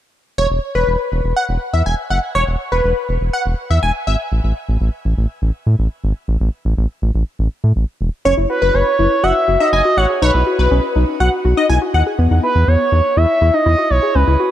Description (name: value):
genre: synth-pop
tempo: 122 BPM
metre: 4/4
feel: straight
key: E major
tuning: A4 = 440 Hz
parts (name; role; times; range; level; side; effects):
- funky polysynth comp; second line; 0.4-4.2, 8.3-12.0 s; B4 to G#5; -19 LUFS; left 1 dB; chorus, shimmer reverb, tape echo
- round analog bass; bass; 0.4-14.4 s; E1 to A2; -15 LUFS; equal; none
- soft round pluck; arpeggios; 8.2-14.5 s; B3 to G#4; -20 LUFS; left 4 dB; chorus, shimmer reverb, tape echo
- expressive portamento lead; melody; 8.5-14.5 s; B4 to E5; -16 LUFS; right 2 dB; chorus, shimmer reverb, tape echo
room: moderate plate reverb, RT60 2.9 s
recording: dark, warm production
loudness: -14 LUFS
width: side -12 dB against mid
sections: 0.4-8.3 A section; 8.3-14.5 B section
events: none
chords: 0.4 N.C.; 4.3 A5; 8.3 F#5; 10.2 B; 12.2 E5